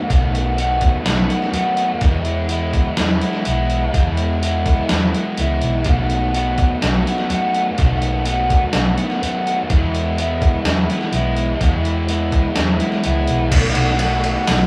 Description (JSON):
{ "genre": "rock, shoegaze and dream pop", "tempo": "125 BPM", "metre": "4/4", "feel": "straight", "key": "B mixolydian", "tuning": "A4 = 441 Hz", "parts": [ { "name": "crunchy overdriven guitar", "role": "riff", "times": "0.0-14.7 s", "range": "E2 to F#4", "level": "-22 LUFS", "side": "equal", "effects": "none" }, { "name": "hollow-body short-scale picked electric bass", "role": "bass", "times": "0.1-14.7 s", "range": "B1 to F#2", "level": "-24 LUFS", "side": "equal", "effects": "none" }, { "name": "detuned 8-bit digital drum machine", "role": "drums", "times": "0.1-14.6 s", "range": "crash cymbal, hi-hat, kick drum, ride cymbal, snare drum", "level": "-21 LUFS", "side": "equal", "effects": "none" } ], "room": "moderate small room ambience, RT60 0.5 s", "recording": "rough rehearsal-room recording", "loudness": "-18 LUFS", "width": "mono", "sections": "0.0-13.5 A section; 13.5-14.7 B section", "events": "none", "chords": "0.0 B7; 2.0 E; 5.9 B7; 9.7 E; 13.5 B7", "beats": "| 0.09 0.57 1.05 1.53 | 2.01 2.49 2.98 3.46 | 3.94 4.42 4.90 5.38 | 5.86 6.34 6.82 7.30 | 7.78 8.26 8.74 9.22 | 9.70 10.18 10.66 11.13 | 11.61 12.09 12.57 13.04 | 13.52 14.00 14.47" }